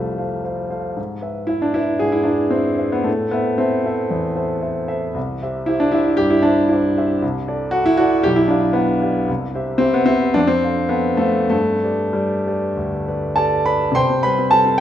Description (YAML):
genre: classical, romantic character piece for solo piano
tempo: 93-119 BPM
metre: 4/4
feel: rubato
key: A minor, C major from 5.2 s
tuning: A4 = 440 Hz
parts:
  - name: warm grand piano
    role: solo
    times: 0.0-14.8 s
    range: B1 to C6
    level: -16 LUFS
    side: equal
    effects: none
room: wet recital hall reverb, RT60 1.9 s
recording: none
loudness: -16 LUFS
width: side -11 dB against mid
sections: 0.0-14.0 A section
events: none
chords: 0.0 F; 1.0 E/G#; 3.1 Am; 5.2 C; 7.2 D5/C; 8.3 G7/B; 9.3 C; 10.4 F; 11.5 G; 14.0 C5